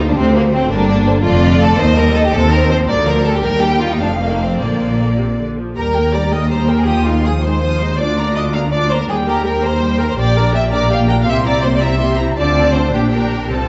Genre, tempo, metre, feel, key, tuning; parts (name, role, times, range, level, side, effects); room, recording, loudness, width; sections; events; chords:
quick classical-period movement for string orchestra; 109 BPM (dotted quarters); 6/8; rubato; Bb major, Eb major from 5.8 s; A4 = 440 Hz
rich studio violin section; melody; 0.0-13.7 s; Bb4 to Eb6; -26 LUFS; equal
clear studio violin section; second line; 0.0-13.7 s; Bb3 to G5; -20 LUFS; equal
rich studio viola section; accompaniment; 0.0-13.7 s; C3 to Bb4; -23 LUFS; equal
rich studio cello section; bass; 0.0-13.7 s; D2 to D3; -21 LUFS; equal
rich studio double bass section; bass; 0.0-13.7 s; F1 to Eb2; -21 LUFS; equal
moderate concert hall reverb, RT60 2.2 s; dark, warm production, nothing above 7.8 kHz; -15 LUFS; mono
0.0-5.8 A section; 5.8-13.7 B section
0.2 D7; 0.7 Gm; 1.2 Dm/F; 1.8 Eb; 2.3 F5/Eb; 2.9 Bb/D; 3.4 Eb; 4.0 F; 4.6 Bb; 5.8 Eb; 6.9 Fm7/Eb; 8.0 Bb/D; 9.1 Eb; 10.2 Gm/Bb; 11.3 C7; 12.4 Dm7; 12.9 Gm/Bb